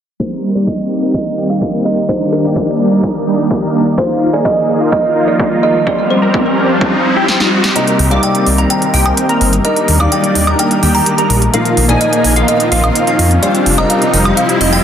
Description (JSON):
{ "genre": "EDM, festival progressive house", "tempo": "127 BPM", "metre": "4/4", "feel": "straight", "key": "C minor", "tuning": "A4 = 440 Hz", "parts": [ { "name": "kalimba", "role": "melody", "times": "0.2-14.8 s", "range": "Bb4 to Bb5", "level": "-18 LUFS", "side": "right 2 dB", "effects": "digital delay" }, { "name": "lush unison pad", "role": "sustained chords", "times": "0.6-14.8 s", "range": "C3 to D5", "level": "-20 LUFS", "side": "equal", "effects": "chorus, vintage 12-bit sampler grit, sidechain pumping" }, { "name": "big supersaw lead", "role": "riff", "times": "0.2-14.8 s", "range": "G3 to D5", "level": "-15 LUFS", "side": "equal", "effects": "phaser, sidechain pumping, low-pass filter, digital delay" }, { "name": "electronic kick drum", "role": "drums", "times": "0.2-6.9 s", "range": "none", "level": "-18 LUFS", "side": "equal", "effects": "high-pass filter on kick, high-pass filter on room" }, { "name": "riser", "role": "sound effects", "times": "5.1-14.8 s", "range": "none", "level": "-20 LUFS", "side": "equal", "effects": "none" }, { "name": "big-room dance drum kit", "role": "drums", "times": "7.3-14.8 s", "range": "hi-hat, snare drum, woodblock", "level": "-17 LUFS", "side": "right 1 dB", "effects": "none" }, { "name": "felt-muted upright piano", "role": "accompaniment", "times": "7.8-14.8 s", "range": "Bb2 to Eb5", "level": "-18 LUFS", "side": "left 3 dB", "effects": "sidechain pumping, digital delay" }, { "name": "plucky unison lead", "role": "arpeggios", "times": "7.8-14.8 s", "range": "Eb5 to D6", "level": "-20 LUFS", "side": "equal", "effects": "wide subtle chorus, sidechain pumping, digital delay" }, { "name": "wide detuned saw bass", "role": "bass", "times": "8.0-14.8 s", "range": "F1 to F2", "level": "-14 LUFS", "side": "equal", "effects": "chorus, sidechain pumping" } ], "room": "light reverb", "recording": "dense, heavily limited modern master, low-pass filter", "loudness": "-10 LUFS", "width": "side -9 dB against mid", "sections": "0.2-7.8 A section; 7.8-14.8 B section", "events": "filter sweep 0.2-7.8; riser 5.1-7.8, 7.8-14.8; kick drops out 7.3-7.8; drum fill 7.3-7.8; build-up 7.8-14.8", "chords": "0.2 Cm7; 2.1 Ebmaj7; 4.0 Bbsus4; 5.9 Fsus2; 7.8 Cm7; 9.6 Ebmaj7; 11.5 Bbsus4; 13.4 Fsus2" }